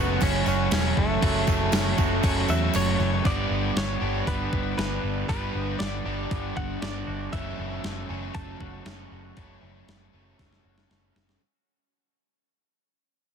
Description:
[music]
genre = rock, shoegaze and dream pop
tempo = 118 BPM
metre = 4/4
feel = straight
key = unclear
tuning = A4 = 440 Hz
[part]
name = direct-recorded clean electric guitar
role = melody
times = 0.0-10.9 s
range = A3 to A5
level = -32 LUFS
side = equal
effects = tape echo
[part]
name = twangy electric guitar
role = arpeggios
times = 0.0-11.4 s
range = E3 to F#4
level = -37 LUFS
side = right 1 dB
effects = analog chorus, tape echo
[part]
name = biting overdriven guitar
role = riff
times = 0.0-11.4 s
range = F#2 to D4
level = -32 LUFS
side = left 12 dB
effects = wide subtle chorus
[part]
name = overdriven semi-hollow guitar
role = riff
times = 0.0-11.4 s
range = F#2 to A4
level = -30 LUFS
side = right 15 dB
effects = reverse reverb
[part]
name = vintage muted picked electric bass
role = bass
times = 0.0-11.3 s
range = E1 to E2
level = -30 LUFS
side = equal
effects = none
[part]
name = clean 12-bit digital drum machine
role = drums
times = 0.2-11.4 s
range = crash cymbal, hi-hat, kick drum, snare drum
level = -28 LUFS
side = equal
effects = none
[part]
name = tambourine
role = percussion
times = 0.2-3.1 s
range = none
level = -41 LUFS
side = right 20 dB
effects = none
[sound]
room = little or no reverb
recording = dense, heavily limited modern master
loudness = -23 LUFS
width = side -7 dB against mid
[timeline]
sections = 0.0-3.2 A section; 3.2-11.4 B section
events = kick and snare drop out 2.7-3.2; fade-out 3.2-11.4; drum fill 10.4-11.4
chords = 0.0 F#m7; 3.2 G; 7.3 F#m7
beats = 0.21 0.71 | 1.22 1.73 2.23 2.74 | 3.25 3.75 4.26 4.77 | 5.28 5.79 6.30 6.81 | 7.32 7.83 8.34 8.85 | 9.37 9.88 10.39 10.90

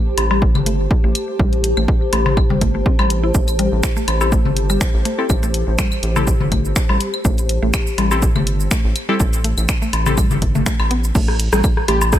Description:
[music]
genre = minimal techno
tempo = 123 BPM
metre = 4/4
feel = swing 54% on 16ths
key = A minor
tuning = A4 = 443 Hz
[part]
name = granular cloud pad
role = texture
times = 0.0-11.2 s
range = G4 to A5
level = -25 LUFS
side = left 2 dB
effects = built-in reverb, sidechain pumping
[part]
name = rubbery square bass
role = bass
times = 0.2-12.2 s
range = G1 to A1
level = -19 LUFS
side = equal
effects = sidechain pumping
[part]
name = punchy analog drum machine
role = drums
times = 0.2-12.2 s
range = crash cymbal, finger snaps, hi-hat, shaker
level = -25 LUFS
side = equal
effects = none
[part]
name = garage drum kit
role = percussion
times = 0.2-12.2 s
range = claves, rim click, toms, woodblock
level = -21 LUFS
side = left 3 dB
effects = none
[part]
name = mallet-like synth pluck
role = riff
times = 0.3-11.9 s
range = G3 to E4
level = -25 LUFS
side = equal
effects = chorus, sidechain pumping, ping-pong delay
[part]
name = electronic kick drum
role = drums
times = 0.4-12.2 s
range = none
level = -17 LUFS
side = equal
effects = none
[part]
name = wavetable chord stab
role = stabs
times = 4.2-10.1 s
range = C4 to A4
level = -25 LUFS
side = left 4 dB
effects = dub echo
[part]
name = plucky unison lead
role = melody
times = 11.9-12.0 s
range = G4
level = -20 LUFS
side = right 2 dB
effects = dub echo
[sound]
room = little or no reverb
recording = none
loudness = -15 LUFS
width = side -12 dB against mid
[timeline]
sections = 0.0-11.2 A section; 11.2-12.2 B section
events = drop 11.2-12.2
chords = 0.0 Am7; 11.2 A7(no3)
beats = 0.42 0.91 | 1.40 1.88 2.37 2.86 | 3.35 3.83 4.32 4.81 | 5.30 5.79 6.27 6.76 | 7.25 7.74 8.22 8.71 | 9.20 9.69 10.18 10.66 | 11.15 11.64 12.13

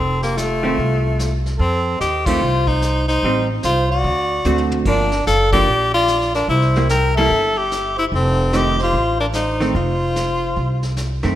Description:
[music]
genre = jazz, small-group swing and bop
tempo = 147 BPM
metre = 4/4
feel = swing 64% on 8ths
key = F mixolydian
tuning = A4 = 437 Hz
[part]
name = clear tenor saxophone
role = melody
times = 0.0-10.9 s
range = A3 to Bb4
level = -19 LUFS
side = left 2 dB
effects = none
[part]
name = dark trumpet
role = second line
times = 0.0-10.9 s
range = F4 to G5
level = -26 LUFS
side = right 3 dB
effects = none
[part]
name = upright bass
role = bass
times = 0.0-11.4 s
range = F1 to Gb2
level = -20 LUFS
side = equal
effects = none
[part]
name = vintage brush drum kit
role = drums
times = 0.2-11.4 s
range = brushed snare drum, crash cymbal, hi-hat, kick drum, snare drum, toms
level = -28 LUFS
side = equal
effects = none
[part]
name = vintage hollow-body jazz guitar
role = accompaniment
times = 0.6-11.4 s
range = D3 to F#4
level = -22 LUFS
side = right 2 dB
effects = none
[sound]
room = moderate lush hall reverb, RT60 1.5 s, small room ambience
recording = rough home demo mix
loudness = -15 LUFS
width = side -12 dB against mid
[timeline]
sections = 0.0-11.4 A section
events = band accent 2.2, 5.5; drum fill 4.5-4.9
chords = 0.0 F7; 3.2 Am7b5; 4.0 D7; 4.9 Gm7; 6.5 C7; 8.1 F7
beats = 0.37 0.78 1.19 | 1.59 2.00 2.41 2.82 | 3.23 3.64 4.04 4.45 | 4.86 5.27 5.68 6.08 | 6.49 6.90 7.31 7.72 | 8.12 8.53 8.94 9.35 | 9.76 10.16 10.57 10.98

